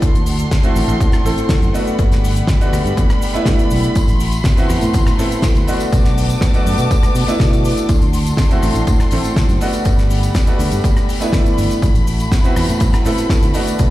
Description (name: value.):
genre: nu-disco, nu disco.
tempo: 122 BPM.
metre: 4/4.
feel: straight.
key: A dorian.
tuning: A4 = 445 Hz.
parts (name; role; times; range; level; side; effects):
dark studio violin section; sustained chords; 0.0-13.9 s; G3 to D6; -25 LUFS; left 2 dB; sidechain pumping.
fingered electric bass; bass; 0.0-13.9 s; G1 to B2; -18 LUFS; equal; none.
damped 70s drum kit; drums; 0.0-13.9 s; cabasa, hi-hat, rim click, snare drum; -24 LUFS; left 1 dB; none.
electronic kick drum; drums; 0.0-13.9 s; none; -16 LUFS; equal; none.
clear concert grand piano; accompaniment; 0.6-13.9 s; A3 to A4; -20 LUFS; right 1 dB; sidechain pumping, digital delay.
tambourine; percussion; 4.0-13.9 s; none; -34 LUFS; left 1 dB; none.
room: small room ambience.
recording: played on a big sound system in a bare room, stone room reverb.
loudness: -13 LUFS.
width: side -16 dB against mid.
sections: 0.0-13.9 A section.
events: none.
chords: 0.0 D7; 1.7 Gmaj7; 4.0 Am69; 5.9 Bm7; 7.9 D7; 9.6 Gmaj7; 11.8 Am69.